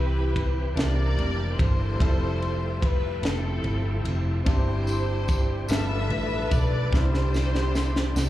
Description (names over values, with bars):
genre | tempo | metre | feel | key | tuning
slow gospel | 49 BPM (dotted quarters) | 6/8 | straight | C major | A4 = 440 Hz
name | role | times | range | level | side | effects
warm studio string section | melody | 0.0-8.3 s | C4 to E5 | -30 LUFS | equal | plate reverb, slapback echo
clear grand piano | accompaniment | 0.0-8.3 s | G2 to B5 | -34 LUFS | left 4 dB | slapback echo
bright tonewheel organ | sustained chords | 0.0-8.3 s | D3 to B4 | -35 LUFS | right 2 dB | slow rotary speaker, chorus vibrato
hollow-body short-scale fingered electric bass | bass | 0.0-8.3 s | F1 to C2 | -25 LUFS | equal | none
tight funk drum kit | drums | 0.4-8.3 s | kick drum, ride cymbal, snare drum | -26 LUFS | equal | none
tambourine | percussion | 4.9-8.3 s | none | -41 LUFS | left 1 dB | none
room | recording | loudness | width
little or no reverb | live gig heard through the venue's PA, club reverb | -22 LUFS | side -14 dB against mid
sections
0.0-8.3 A section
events
drum fill 6.9-8.3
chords
0.0 Cmaj7; 0.8 C13; 2.0 Fmaj9; 4.5 C/G; 5.7 G13; 6.9 Cmaj9